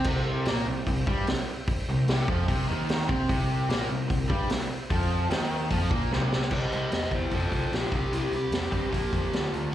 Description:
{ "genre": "blues rock power trio and southern rock", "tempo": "149 BPM", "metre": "4/4", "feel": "straight", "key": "C mixolydian", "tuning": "A4 = 441 Hz", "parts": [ { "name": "cranked stack guitar", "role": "riff", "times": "0.0-9.7 s", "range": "F2 to C4", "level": "-31 LUFS", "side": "equal", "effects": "overdrive, slapback echo" }, { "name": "fuzz picked electric bass", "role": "bass", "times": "0.0-9.7 s", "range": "F1 to C3", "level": "-29 LUFS", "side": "equal", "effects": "overdrive" }, { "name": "vintage drum kit", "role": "drums", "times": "0.0-9.6 s", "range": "crash cymbal, hi-hat, kick drum, snare drum, toms", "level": "-29 LUFS", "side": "equal", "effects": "none" }, { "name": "overdriven tonewheel organ", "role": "sustained chords", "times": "0.1-6.5 s", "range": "C5 to G5", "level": "-42 LUFS", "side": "right 2 dB", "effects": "none" }, { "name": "overdriven slide guitar", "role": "melody", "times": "6.5-9.5 s", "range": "Eb4 to Eb5", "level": "-31 LUFS", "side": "left 1 dB", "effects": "slapback echo" } ], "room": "small room ambience", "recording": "live gig heard through the venue's PA, club reverb", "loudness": "-25 LUFS", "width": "side -12 dB against mid", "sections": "0.0-6.5 A section; 6.5-9.7 B section", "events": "drum fill 6.1-6.5", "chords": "0.0 C; 7.3 F; 7.9 C; 8.9 Bb", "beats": "| 0.05 0.46 0.86 1.27 | 1.67 2.08 2.48 2.89 | 3.29 3.69 4.10 4.50 | 4.90 5.31 5.71 6.11 | 6.51 6.92 7.32 7.72 | 8.12 8.53 8.93 9.33 | 9.73" }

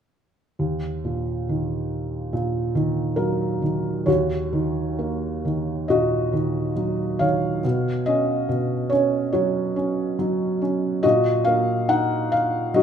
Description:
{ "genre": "classical, lyrical solo piano", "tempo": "70 BPM", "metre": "4/4", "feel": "rubato", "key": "Eb minor", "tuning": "A4 = 442 Hz", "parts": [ { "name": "felt-muted upright piano", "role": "solo", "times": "0.6-12.8 s", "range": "Eb2 to Gb5", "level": "-20 LUFS", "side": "equal", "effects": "none" } ], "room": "moderate recital hall reverb, RT60 1.4 s", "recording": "minimal, uncompressed stereo recording", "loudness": "-20 LUFS", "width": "side -8 dB against mid", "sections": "0.6-4.1 A section; 4.1-12.8 B section", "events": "none", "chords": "0.6 Ebm; 4.1 Ebm7; 7.6 Bsus2; 11.0 Gb6/Bb", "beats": "| 0.60 1.49 2.33 3.18 | 4.07 5.00 5.90 6.77 | 7.64 8.50 9.34 10.19 | 11.04 11.89 12.74" }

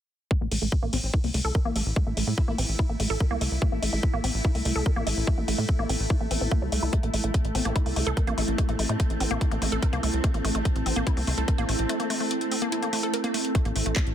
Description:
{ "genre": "psychedelic trance", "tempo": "145 BPM", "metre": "4/4", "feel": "straight", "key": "A phrygian", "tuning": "A4 = 440 Hz", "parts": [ { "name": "swarming drone", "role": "sustained chords", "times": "1.4-14.1 s", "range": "A3 to E4", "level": "-33 LUFS", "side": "left 1 dB", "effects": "built-in reverb, sidechain pumping" }, { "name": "woody wave-folded pluck", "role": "riff", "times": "0.3-13.9 s", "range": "G3 to Bb4", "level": "-31 LUFS", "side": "moving between left 4 dB and right 6 dB", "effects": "chorus, auto-pan, sidechain pumping, digital delay" }, { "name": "electronic kick drum", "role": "drums", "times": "0.3-14.0 s", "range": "none", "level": "-23 LUFS", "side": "equal", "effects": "none" }, { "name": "deep dark ambient pad", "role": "texture", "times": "4.0-14.1 s", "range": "E4 to A5", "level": "-35 LUFS", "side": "right 3 dB", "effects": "chorus, built-in reverb, sidechain pumping" }, { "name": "tight sequencer bass", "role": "bass", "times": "0.4-14.1 s", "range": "A1 to A2", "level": "-28 LUFS", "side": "equal", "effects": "none" }, { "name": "drum and bass drum kit", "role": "drums", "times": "0.5-14.1 s", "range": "handclaps, hi-hat", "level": "-32 LUFS", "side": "left 1 dB", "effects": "none" }, { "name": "formant-sweep wobble bass", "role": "second line", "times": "0.9-2.5, 7.5-7.7 s", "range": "C4 to E4", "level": "-44 LUFS", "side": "left 3 dB", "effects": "none" } ], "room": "light reverb", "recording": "dense, heavily limited modern master", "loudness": "-23 LUFS", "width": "side -10 dB against mid", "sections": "0.3-14.1 A section", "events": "filter sweep on synth arpeggio sound 0.3-14.1; kick drops out 11.9-13.5", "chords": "0.3 A5", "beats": "| 0.31 0.72 1.14 1.55 | 1.96 2.38 2.79 3.20 | 3.62 4.03 4.45 4.86 | 5.27 5.69 6.10 6.51 | 6.93 7.34 7.76 8.17 | 8.58 9.00 9.41 9.82 | 10.24 10.65 11.07 11.48 | 11.89 12.31 12.72 13.13 | 13.55 13.96" }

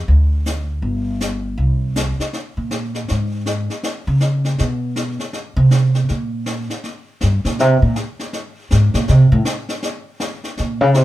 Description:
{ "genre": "jazz piano trio", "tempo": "160 BPM", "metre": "4/4", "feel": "swing 63% on 8ths", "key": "unclear", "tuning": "A4 = 440 Hz", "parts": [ { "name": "upright bass", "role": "bass", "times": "0.0-11.0 s", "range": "G1 to Db3", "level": "-15 LUFS", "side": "equal", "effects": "none" }, { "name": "jazz brush drum kit", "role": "drums", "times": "0.1-11.0 s", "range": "brushed snare drum, hi-hat, snare drum", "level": "-25 LUFS", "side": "left 1 dB", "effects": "none" } ], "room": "little or no reverb", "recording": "minimal, uncompressed stereo recording", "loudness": "-16 LUFS", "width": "side -15 dB against mid", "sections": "0.0-2.3 A section; 2.3-11.0 B section", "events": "upright bass solo 2.3-11.0", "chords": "none", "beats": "0.09 0.46 | 0.83 1.21 1.58 1.96 | 2.33 2.71 3.08 3.46 | 3.83 4.21 4.58 4.96 | 5.33 5.71 6.08 6.46 | 6.83 7.21 7.58 7.95 | 8.33 8.70 9.08 9.45 | 9.82 10.20 10.57 10.94" }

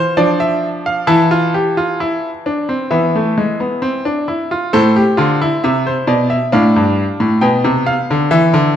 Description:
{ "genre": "classical, baroque-style 3-part fugue for grand piano", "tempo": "66 BPM", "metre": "4/4", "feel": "straight", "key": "A minor", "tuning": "A4 = 440 Hz", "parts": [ { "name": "bright grand piano", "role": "solo", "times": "0.0-8.8 s", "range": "G2 to A5", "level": "-12 LUFS", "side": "equal", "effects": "none" } ], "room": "wet recital hall reverb, RT60 1.4 s", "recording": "dark, warm production", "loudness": "-12 LUFS", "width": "side -9 dB against mid", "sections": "0.0-4.7 A section; 4.7-8.8 B section", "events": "none", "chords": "0.0 Dm; 1.1 Esus4; 2.9 E5; 4.7 Am; 6.5 Bm7b5", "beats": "0.18 | 1.08 2.00 2.91 3.82 | 4.73 5.62 6.52 7.41 | 8.30" }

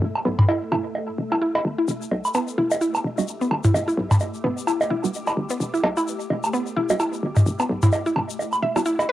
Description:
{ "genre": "minimal techno", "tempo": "129 BPM", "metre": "4/4", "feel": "swing 58% on 16ths", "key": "E minor", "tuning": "A4 = 441 Hz", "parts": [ { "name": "hollow knocking FM bass", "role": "bass", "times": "0.0-9.1 s", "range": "E1 to B1", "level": "-26 LUFS", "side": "left 1 dB", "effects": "high-pass filter" }, { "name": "swarming drone", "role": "texture", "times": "0.0-9.1 s", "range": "A3 to A4", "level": "-35 LUFS", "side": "left 1 dB", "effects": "built-in reverb, phaser, cassette tape" }, { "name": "electronic woodblock, toms and bongos", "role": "percussion", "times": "0.2-9.1 s", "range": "none", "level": "-22 LUFS", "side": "equal", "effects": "overdrive, tape echo" }, { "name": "mallet-like synth pluck", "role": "riff", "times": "0.3-9.1 s", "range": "B3 to E5", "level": "-25 LUFS", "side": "equal", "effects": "chorus, phaser, cassette tape, analog delay" }, { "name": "filtered dub chord stab", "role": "stabs", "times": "1.3-8.8 s", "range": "G3 to F#4", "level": "-28 LUFS", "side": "right 5 dB", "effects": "analog chorus, cassette tape, tape echo" }, { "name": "egg shaker", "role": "percussion", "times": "1.9-9.1 s", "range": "none", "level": "-38 LUFS", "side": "left 10 dB", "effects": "none" } ], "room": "light reverb, digital ambience", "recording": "home recording on cassette", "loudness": "-20 LUFS", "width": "side -14 dB against mid", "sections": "0.0-9.1 A section", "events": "filter sweep on synth arpeggio sound 0.0-9.1", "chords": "0.0 Em", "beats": "| 0.02 0.49 0.95 1.42 | 1.88 2.35 2.81 3.28 | 3.74 4.21 4.67 5.14 | 5.60 6.07 6.53 7.00 | 7.46 7.93 8.39 8.86" }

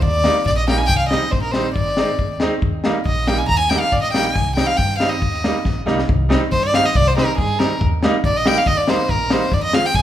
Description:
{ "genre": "klezmer", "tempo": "139 BPM", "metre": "2/4", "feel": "straight", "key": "Eb major, C minor from 6.1 s", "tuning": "A4 = 441 Hz", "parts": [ { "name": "warm violin", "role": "melody", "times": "0.0-10.0 s", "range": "Ab4 to Bb5", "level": "-19 LUFS", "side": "equal", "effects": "none" }, { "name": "upright bass", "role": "bass", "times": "0.0-10.0 s", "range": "Ab1 to G2", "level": "-23 LUFS", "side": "equal", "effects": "none" }, { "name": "crunchy breakbeat drum kit", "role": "drums", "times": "0.0-10.0 s", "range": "kick drum, snare drum", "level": "-21 LUFS", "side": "left 2 dB", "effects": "none" }, { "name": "bright upright piano", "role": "accompaniment", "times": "0.2-9.8 s", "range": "G3 to F4", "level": "-22 LUFS", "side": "right 2 dB", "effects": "none" } ], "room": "light reverb", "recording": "minimal, uncompressed stereo recording", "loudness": "-15 LUFS", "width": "side -11 dB against mid", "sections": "0.0-6.1 A section; 6.1-10.0 B section", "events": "drum fill 5.7-6.1", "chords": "0.0 Eb; 0.9 Cm; 1.8 Ab; 2.6 Eb; 4.4 Cm; 5.2 Eb; 6.1 Cm; 7.8 Eb; 9.5 Fm", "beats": "| 0.02 0.45 | 0.89 1.32 | 1.76 2.19 | 2.62 3.06 | 3.49 3.92 | 4.36 4.79 | 5.22 5.65 | 6.08 6.51 | 6.95 7.37 | 7.80 8.23 | 8.66 9.09 | 9.52 9.94" }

